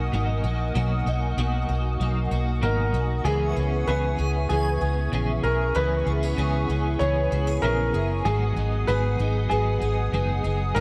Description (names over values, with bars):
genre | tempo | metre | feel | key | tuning
dream pop | 96 BPM | 4/4 | straight | C# dorian | A4 = 441 Hz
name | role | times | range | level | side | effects
felt-muted upright piano | melody | 0.0-10.8 s | G#4 to D#5 | -30 LUFS | equal | delay
clean electric guitar | accompaniment | 0.0-10.8 s | G#2 to G#4 | -33 LUFS | equal | tremolo, analog chorus
hollow soft pad | sustained chords | 0.0-10.8 s | G#4 to D#6 | -36 LUFS | equal | ensemble chorus
picked twelve-string acoustic guitar | arpeggios | 0.0-10.8 s | E3 to G#4 | -35 LUFS | equal | ensemble chorus, delay
vintage muted fingered electric bass | bass | 0.0-10.8 s | F#1 to C#2 | -27 LUFS | equal | none
room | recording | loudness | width
light reverb, small room ambience | dark, warm production | -24 LUFS | mono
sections
0.0-3.3 A section; 3.3-10.8 B section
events
none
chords
0.0 Bmaj7; 3.3 C#m7; 8.3 G#m7